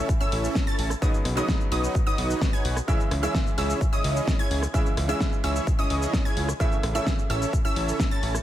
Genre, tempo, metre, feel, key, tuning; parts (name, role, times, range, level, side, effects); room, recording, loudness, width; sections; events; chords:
EDM, festival progressive house; 129 BPM; 4/4; straight; C# minor; A4 = 443 Hz
bright baby grand piano; accompaniment; 0.0-8.4 s; C#3 to E4; -33 LUFS; right 1 dB; sidechain pumping, ping-pong delay
wide unison pluck; arpeggios; 0.0-8.3 s; D#6 to A6; -33 LUFS; right 1 dB; sidechain pumping, ping-pong delay
dense compressed supersaw; riff; 0.0-8.3 s; C#4 to A5; -30 LUFS; right 1 dB; sidechain pumping, ping-pong delay
fat analog bass; bass; 0.0-8.4 s; A1 to C#2; -27 LUFS; equal; sidechain pumping
big-room dance drum kit; drums; 0.1-8.4 s; cabasa, hi-hat, rim click, snare drum; -31 LUFS; left 1 dB; small room ambience
electronic kick drum; drums; 0.1-8.1 s; -25 LUFS; equal; small room ambience
little or no reverb; -22 LUFS; side -12 dB against mid
0.0-8.4 A section
0.0 A; 1.0 Badd9; 2.9 C#m; 6.6 A